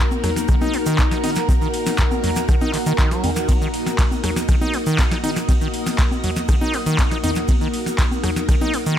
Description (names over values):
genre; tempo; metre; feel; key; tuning
acid house; 120 BPM; 4/4; straight; Eb minor pentatonic; A4 = 442 Hz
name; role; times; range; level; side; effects
string machine, full ensemble; sustained chords; 0.0-9.0 s; Bb3 to Eb5; -27 LUFS; equal; ensemble chorus, sidechain pumping
acid bass, saw; riff; 0.0-9.0 s; Eb2 to Eb4; -24 LUFS; equal; sidechain pumping, analog delay
warbly tape-like pad; texture; 0.0-9.0 s; Eb4 to Eb6; -27 LUFS; left 1 dB; chorus, built-in reverb, phaser, sidechain pumping
booming analog drum machine; drums; 0.1-9.0 s; congas, handclaps, hi-hat, ride cymbal, rim click, snare drum, toms; -24 LUFS; equal; small room reverb, analog delay
tube shaker; percussion; 0.1-9.0 s; none; -36 LUFS; right 2 dB; analog delay
electronic kick drum; drums; 0.5-8.6 s; none; -18 LUFS; equal; small room reverb
room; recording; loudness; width
digital ambience; echo-heavy mix; -17 LUFS; side -10 dB against mid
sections
0.0-9.0 A section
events
none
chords
0.0 Ebm